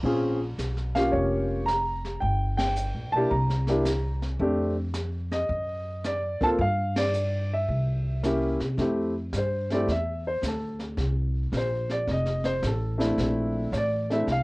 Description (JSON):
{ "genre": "jazz piano trio", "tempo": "110 BPM", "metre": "4/4", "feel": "swing 67% on 8ths", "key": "F major", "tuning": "A4 = 440 Hz", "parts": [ { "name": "warm grand piano", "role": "melody", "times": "0.0-14.4 s", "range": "A3 to Bb5", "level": "-26 LUFS", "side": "equal", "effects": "cassette tape" }, { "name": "upright bass", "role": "bass", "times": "0.0-14.4 s", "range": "F1 to C3", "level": "-28 LUFS", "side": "equal", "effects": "none" }, { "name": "jazz brush drum kit", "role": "drums", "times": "0.0-14.4 s", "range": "brushed snare drum, hi-hat, kick drum, ride cymbal, snare drum", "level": "-34 LUFS", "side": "equal", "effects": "none" } ], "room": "light reverb", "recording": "home recording on cassette", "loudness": "-24 LUFS", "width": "side -24 dB against mid", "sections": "0.0-8.8 A section; 8.8-14.4 B section", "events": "band accent 2.5, 6.9; grand piano solo 8.8-14.4", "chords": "0.0 Bbm; 2.2 Gm; 3.3 C7(no3); 4.4 F69; 5.5 F#5; 6.6 G5; 7.7 C7b9; 8.8 Fmaj9; 11.0 Bbsus2; 12.1 F; 13.2 Bbmaj9#11", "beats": "| 0.03 0.57 1.12 1.67 | 2.21 2.76 3.31 3.85 | 4.40 4.95 5.49 6.04 | 6.59 7.14 7.68 8.23 | 8.78 9.33 9.88 10.43 | 10.97 11.52 12.07 12.62 | 13.17 13.72 14.27" }